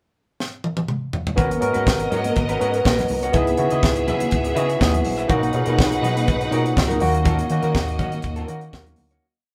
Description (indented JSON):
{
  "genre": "disco",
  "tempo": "122 BPM",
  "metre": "4/4",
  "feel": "straight",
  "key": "G# minor",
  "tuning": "A4 = 441 Hz",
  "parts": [
    { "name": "tight funk drum kit", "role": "drums", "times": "0.4-9.2 s", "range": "hi-hat, kick drum, snare drum, toms", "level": "-25 LUFS", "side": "equal", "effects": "none" },
    { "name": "clear studio string section", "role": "second line", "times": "1.4-9.2 s", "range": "A#3 to F#5", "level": "-30 LUFS", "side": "equal", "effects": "none" },
    { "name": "barky tine electric piano", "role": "accompaniment", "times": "1.4-9.2 s", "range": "A#2 to B4", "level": "-25 LUFS", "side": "equal", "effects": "none" },
    { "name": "electric guitar at the edge of break-up", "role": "accompaniment", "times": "1.4-9.3 s", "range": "C#4 to E5", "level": "-30 LUFS", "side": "equal", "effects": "none" },
    { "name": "fingered electric bass", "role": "bass", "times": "1.4-9.2 s", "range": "G#1 to D#3", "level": "-28 LUFS", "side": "equal", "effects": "none" },
    { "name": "congas", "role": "percussion", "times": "1.4-9.1 s", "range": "none", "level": "-34 LUFS", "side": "equal", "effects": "none" }
  ],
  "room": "moderate studio ambience, RT60 0.5 s",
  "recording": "band playing live in one room",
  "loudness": "-20 LUFS",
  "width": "mono",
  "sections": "0.0-1.4 pickup bar; 1.4-9.2 verse",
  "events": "drum fill 0.4-1.4; fade-out 7.3-9.2",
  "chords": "0.0 N.C.; 1.4 G#m11; 3.3 C#m9; 5.3 Bmaj7; 7.0 D#m7",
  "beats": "0.40 0.89 | 1.38 1.87 2.36 2.85 | 3.34 3.83 4.32 4.81 | 5.30 5.79 6.28 6.77 | 7.26 7.75 8.24 8.73"
}